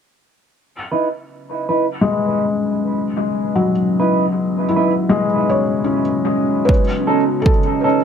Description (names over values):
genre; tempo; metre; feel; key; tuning
ambient dub; 78 BPM; 4/4; straight; C# minor; A4 = 440 Hz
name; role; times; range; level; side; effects
deep dark ambient pad; sustained chords; 1.6-8.0 s; C#4 to D#5; -24 LUFS; right 2 dB; chorus, built-in reverb
clean electric guitar; stabs; 0.9-8.0 s; C#4 to B4; -20 LUFS; right 3 dB; wide subtle chorus, low-pass filter, dub echo
felt-muted upright piano; arpeggios; 2.0-8.0 s; F#3 to C#5; -17 LUFS; left 3 dB; low-pass filter, tape echo
electronic kick drum; drums; 6.7-7.6 s; none; -15 LUFS; right 1 dB; overdrive
room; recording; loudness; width
moderate spring reverb, RT60 2.5 s; echo-heavy mix; -15 LUFS; side -7 dB against mid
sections
0.5-8.0 A section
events
fade-in on ambient pad 0.5-8.0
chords
0.5 C#m9; 6.7 B9